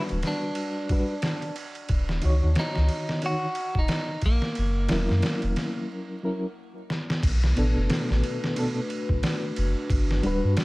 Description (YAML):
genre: trip hop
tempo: 90 BPM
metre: 4/4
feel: swing 59% on 16ths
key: B minor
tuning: A4 = 440 Hz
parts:
  - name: reed electric piano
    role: accompaniment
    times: 0.0-10.6 s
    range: B2 to C#5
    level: -30 LUFS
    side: equal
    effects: tremolo, vintage 12-bit sampler grit, tape echo
  - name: soft dub sub bass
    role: bass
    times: 0.1-10.6 s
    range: D1 to G2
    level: -24 LUFS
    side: equal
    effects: tube saturation
  - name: trip hop sampler-style drum kit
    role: drums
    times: 0.1-10.6 s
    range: crash cymbal, kick drum, ride cymbal, snare drum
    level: -28 LUFS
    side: equal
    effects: none
  - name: clean electric guitar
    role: melody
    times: 0.3-5.9 s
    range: A#3 to F#4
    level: -32 LUFS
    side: equal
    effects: tape echo
  - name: dark analog pad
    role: sustained chords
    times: 7.2-10.6 s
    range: G3 to B4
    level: -32 LUFS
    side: left 1 dB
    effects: chorus
room: little or no reverb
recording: vinyl crackle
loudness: -23 LUFS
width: side -22 dB against mid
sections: 0.0-7.2 A section; 7.2-10.6 B section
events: break 5.9-7.2; drum fill 6.9-7.2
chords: 0.0 Gmaj7; 1.9 D#m7; 4.6 F#7; 7.2 Bm7; 9.9 Gmaj7